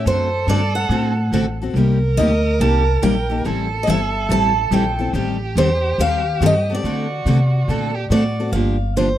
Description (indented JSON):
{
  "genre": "acoustic string swing (jazz manouche)",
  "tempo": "142 BPM",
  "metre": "4/4",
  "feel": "swing 64% on 8ths",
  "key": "unclear",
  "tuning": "A4 = 440 Hz",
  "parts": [
    { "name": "picked steel-string acoustic guitar", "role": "melody", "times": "0.0-9.2 s", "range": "C5 to A5", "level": "-22 LUFS", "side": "right 1 dB", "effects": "none" },
    { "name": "warm violin", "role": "second line", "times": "0.0-8.5 s", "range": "F#4 to Bb4", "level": "-26 LUFS", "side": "right 4 dB", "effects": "none" },
    { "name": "picked steel-string acoustic guitar", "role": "accompaniment", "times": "0.0-9.1 s", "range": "C3 to A4", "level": "-22 LUFS", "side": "left 5 dB", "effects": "none" },
    { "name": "upright bass", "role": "bass", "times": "0.0-9.2 s", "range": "G1 to D3", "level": "-20 LUFS", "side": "equal", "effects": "none" },
    { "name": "picked steel-string acoustic guitar", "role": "accompaniment", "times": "0.1-9.1 s", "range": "C3 to A4", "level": "-24 LUFS", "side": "right 5 dB", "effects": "none" }
  ],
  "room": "small room reverb",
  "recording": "dry, close 1970s-style studio recording",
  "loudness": "-16 LUFS",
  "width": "side -12 dB against mid",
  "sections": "0.0-8.5 A section",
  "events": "none",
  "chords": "0.1 D7; 1.8 Cm7; 3.4 Am7; 5.1 Am7b5; 6.8 D7; 8.5 Gm11"
}